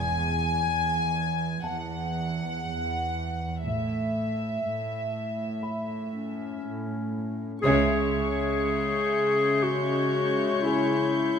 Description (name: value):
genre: cinematic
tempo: 60 BPM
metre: 4/4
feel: straight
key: unclear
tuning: A4 = 441 Hz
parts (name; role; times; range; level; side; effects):
- dark studio violin section; melody; 0.0-11.4 s; E5 to G#5; -31 LUFS; left 3 dB; none
- warm studio cello section; bass; 0.0-11.4 s; E2 to C#3; -30 LUFS; right 3 dB; none
- warm studio double bass section; bass; 0.0-8.6 s; E1 to C#2; -31 LUFS; right 6 dB; none
- dark concert grand piano; texture; 0.0-11.4 s; G#4 to C#6; -39 LUFS; left 1 dB; none
- bright clarinet; second line; 6.1-11.4 s; C#4 to G#4; -26 LUFS; left 3 dB; none
- warm studio violin section; second line; 7.6-11.4 s; C#5; -32 LUFS; left 2 dB; none
- warm studio viola section; accompaniment; 7.6-11.4 s; G#3; -32 LUFS; left 2 dB; none
- warm studio violin section; texture; 7.6-11.4 s; C#6 to G6; -35 LUFS; left 5 dB; none
room: moderate scoring stage reverb, RT60 1.7 s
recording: close, detailed microphones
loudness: -25 LUFS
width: side -7 dB against mid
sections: 0.0-7.6 A section; 7.6-11.4 B section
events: band accent 7.6-8.6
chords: 0.0 E; 3.6 A; 7.6 C#m